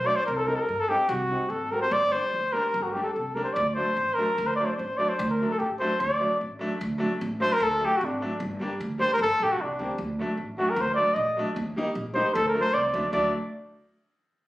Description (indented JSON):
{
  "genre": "klezmer",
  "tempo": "150 BPM",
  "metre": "2/4",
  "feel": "straight",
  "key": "D phrygian dominant",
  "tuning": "A4 = 439 Hz",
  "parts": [
    { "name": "mellow cornet", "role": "melody", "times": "0.0-13.3 s", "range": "D4 to Eb5", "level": "-24 LUFS", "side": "equal", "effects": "none" },
    { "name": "bright upright piano", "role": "accompaniment", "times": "0.0-13.3 s", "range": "F#3 to F#4", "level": "-32 LUFS", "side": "equal", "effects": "none" },
    { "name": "upright bass", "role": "bass", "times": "0.0-13.3 s", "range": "G1 to G2", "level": "-34 LUFS", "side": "right 1 dB", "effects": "none" }
  ],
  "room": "moderate small room reverb, RT60 0.6 s",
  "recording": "recorded on a phone in the room, studio reverb, compression",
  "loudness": "-24 LUFS",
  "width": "side -16 dB against mid",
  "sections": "0.3-6.8 A section; 6.8-13.1 B section",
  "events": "speeding up 0.0-13.9",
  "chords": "0.3 Cm; 1.9 Gm; 3.6 D; 8.4 Gm; 10.0 D; 11.6 Eb; 12.4 D",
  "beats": "| 0.27 0.69 | 1.10 1.51 | 1.92 2.33 | 2.74 3.15 | 3.56 3.97 | 4.37 4.78 | 5.19 5.59 | 6.00 6.40 | 6.80 7.20 | 7.60 8.00 | 8.40 8.80 | 9.20 9.59 | 9.99 10.38 | 10.78 11.17 | 11.57 11.96 | 12.35 12.74 | 13.13"
}